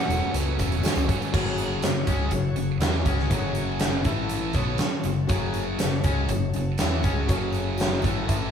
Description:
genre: classic rock.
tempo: 121 BPM.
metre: 4/4.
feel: straight.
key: F# minor.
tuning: A4 = 440 Hz.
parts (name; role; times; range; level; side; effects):
bright reed electric piano; accompaniment; 0.0-8.5 s; E4 to E5; -35 LUFS; left 5 dB; fast tremolo.
picked twelve-string acoustic guitar; accompaniment; 0.0-1.3 s; F#2 to F#4; -38 LUFS; right 4 dB; none.
bright tonewheel organ; sustained chords; 0.0-8.5 s; F#3 to E#5; -40 LUFS; right 2 dB; none.
cranked stack guitar; riff; 0.0-8.5 s; F#2 to F#4; -29 LUFS; left 5 dB; overdrive.
tight distorted guitar; riff; 0.0-8.5 s; F#2 to E4; -32 LUFS; right 8 dB; distortion.
growling picked electric bass; bass; 0.1-8.5 s; E1 to E2; -29 LUFS; right 1 dB; overdrive.
big rock drum kit; drums; 0.1-8.4 s; crash cymbal, hi-hat, kick drum, snare drum; -26 LUFS; equal; none.
tambourine; percussion; 0.1-1.2, 5.3-8.4 s; none; -45 LUFS; left 6 dB; none.
room: moderate studio reverb, RT60 0.6 s.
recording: band playing live in one room.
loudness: -22 LUFS.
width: side -8 dB against mid.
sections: 0.0-1.3 A section; 1.3-8.5 B section.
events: none.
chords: 0.0 F#m; 4.1 A5; 4.5 F#m.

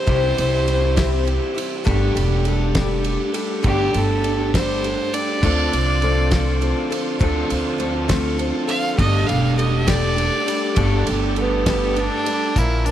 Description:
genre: folk rock and heartland rock.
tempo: 67 BPM (dotted quarters).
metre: 6/8.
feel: straight.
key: unclear.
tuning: A4 = 440 Hz.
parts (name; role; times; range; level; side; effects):
clear fiddle; melody; 0.0-12.9 s; B3 to F5; -24 LUFS; right 1 dB; tape echo.
picked twelve-string acoustic guitar; accompaniment; 0.0-12.9 s; G2 to Bb4; -26 LUFS; left 7 dB; none.
electric guitar through a small old amp; riff; 0.0-12.9 s; Bb2 to A4; -25 LUFS; right 4 dB; none.
upright bass; bass; 0.1-12.9 s; E1 to D2; -21 LUFS; equal; none.
damped 70s drum kit; drums; 0.1-12.9 s; crash cymbal, hi-hat, kick drum, ride cymbal, snare drum; -24 LUFS; right 1 dB; none.
bright tonewheel organ; sustained chords; 5.5-12.9 s; D4 to C5; -34 LUFS; equal; slow rotary speaker, overdrive, chorus vibrato.
room: light reverb.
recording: none.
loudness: -17 LUFS.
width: side -11 dB against mid.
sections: 0.0-12.6 A section.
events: fiddle solo 0.0-12.6.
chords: 0.0 C; 1.9 Gsus2; 5.4 Dm7; 9.0 Gsus2.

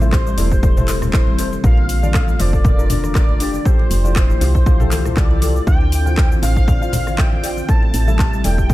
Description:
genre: afro house.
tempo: 119 BPM.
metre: 4/4.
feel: swing 55% on 16ths.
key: D minor.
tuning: A4 = 443 Hz.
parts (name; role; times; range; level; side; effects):
expressive synth lead; melody; 0.0-8.7 s; C5 to A5; -26 LUFS; equal; ensemble chorus, cassette tape, analog delay.
warm analog pad; sustained chords; 0.0-8.7 s; C3 to G4; -29 LUFS; equal; chorus, sidechain pumping.
kalimba; arpeggios; 0.0-8.7 s; G3 to F5; -27 LUFS; left 2 dB; sidechain pumping, analog delay.
felt-muted upright piano; stabs; 0.0-8.6 s; D4 to G5; -28 LUFS; left 3 dB; sidechain pumping, dub echo.
woody FM bass; bass; 0.0-8.7 s; E1 to D2; -19 LUFS; equal; sidechain pumping.
house drum kit; drums; 0.0-8.7 s; handclaps, hi-hat, rim click, shaker; -27 LUFS; left 1 dB; small room ambience, dub echo.
congas; percussion; 0.0-8.7 s; none; -26 LUFS; left 3 dB; none.
electronic kick drum; drums; 0.1-8.7 s; none; -15 LUFS; equal; small room ambience.
room: digital ambience.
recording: echo-heavy mix.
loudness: -13 LUFS.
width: side -16 dB against mid.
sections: 0.0-8.7 A section.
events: none.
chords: 0.0 Am; 1.6 Bb; 3.7 Fadd9; 5.7 Dm7; 7.7 Am.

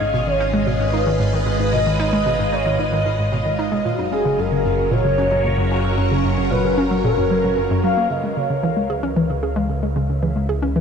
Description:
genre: ambient, sequencer-driven space music.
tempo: 113 BPM.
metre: 4/4.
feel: straight.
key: unclear.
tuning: A4 = 439 Hz.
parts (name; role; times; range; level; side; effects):
expressive synth lead; melody; 0.0-10.8 s; G#4 to E#5; -22 LUFS; equal; wide subtle chorus, tape echo.
phased string machine; sustained chords; 0.0-10.8 s; C#3 to E#5; -24 LUFS; right 1 dB; ensemble chorus, phaser.
hollow square pluck; riff; 0.0-10.8 s; F#2 to G#4; -22 LUFS; equal; chorus, tape echo.
fat analog bass; bass; 0.0-10.8 s; F#1 to C#2; -24 LUFS; equal; none.
pulsing gated texture; texture; 0.0-8.1 s; E#4 to E#5; -34 LUFS; left 1 dB; chorus, built-in reverb.
room: wet huge ambient reverb, RT60 8.1 s.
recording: cassette tape.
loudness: -17 LUFS.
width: side -6 dB against mid.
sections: 0.0-8.1 A section; 8.1-10.8 B section.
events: none.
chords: 0.0 G#m; 3.9 F#; 8.1 C#m7.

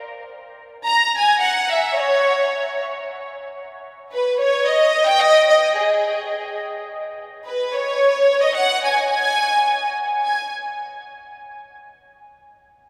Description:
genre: mexican folk.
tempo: 109 BPM.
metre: 3/4.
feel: swing 54% on 8ths, rubato.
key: G# minor.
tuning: A4 = 440 Hz.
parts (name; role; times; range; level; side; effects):
rich symphonic violin section; solo; 0.9-10.5 s; G#4 to A#5; -20 LUFS; equal; none.
room: wet cathedral reverb, RT60 5.6 s.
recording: recorded in a church or concert hall.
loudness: -19 LUFS.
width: mono.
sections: 0.0-6.9 A section; 6.9-10.2 B section; 10.2-11.9 C section.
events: none.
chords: none.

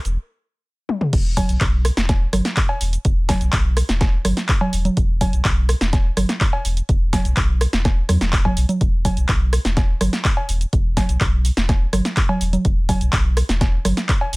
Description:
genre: acid house.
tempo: 125 BPM.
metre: 4/4.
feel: straight.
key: E minor.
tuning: A4 = 440 Hz.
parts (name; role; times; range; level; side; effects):
warm sub bass; bass; 0.1-14.4 s; E1 to E2; -20 LUFS; equal; tube saturation, sidechain pumping.
punchy analog drum machine; drums; 0.1-14.4 s; congas, cowbell, crash cymbal, handclaps, hi-hat, rim click, shaker, snare drum, toms; -21 LUFS; right 1 dB; none.
electronic kick drum; drums; 1.1-14.2 s; none; -19 LUFS; equal; none.
room: little or no reverb.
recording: none.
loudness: -16 LUFS.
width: side -24 dB against mid.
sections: 0.0-1.1 A section; 1.1-14.4 B section.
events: stop 0.2-1.1; drum fill 0.9; drop 1.1-14.4.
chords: none.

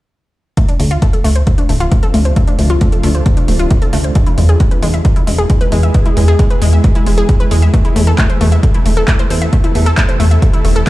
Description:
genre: uplifting trance.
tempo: 134 BPM.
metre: 4/4.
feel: straight.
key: unclear.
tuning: A4 = 436 Hz.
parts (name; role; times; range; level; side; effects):
shimmering ambient pad; sustained chords; 1.4-10.9 s; B2 to A4; -21 LUFS; equal; chorus, built-in reverb, sidechain pumping.
wide unison pluck; arpeggios; 0.6-10.9 s; G#3 to E5; -18 LUFS; left 1 dB; sidechain pumping, tape echo.
big-room dance drum kit; drums; 0.6-10.9 s; handclaps, hi-hat; -23 LUFS; right 1 dB; overdrive.
electronic kick drum; drums; 0.6-10.9 s; none; -12 LUFS; equal; none.
plucky analog bass; bass; 0.8-10.8 s; D1 to E2; -11 LUFS; equal; sidechain pumping.
room: little or no reverb.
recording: played on a big sound system in a bare room, large studio reverb.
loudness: -9 LUFS.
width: side -17 dB against mid.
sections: 0.6-10.9 A section.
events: filter sweep on ambient pad 0.6-10.9.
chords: 0.6 Dm7; 4.2 E; 7.7 Am/E.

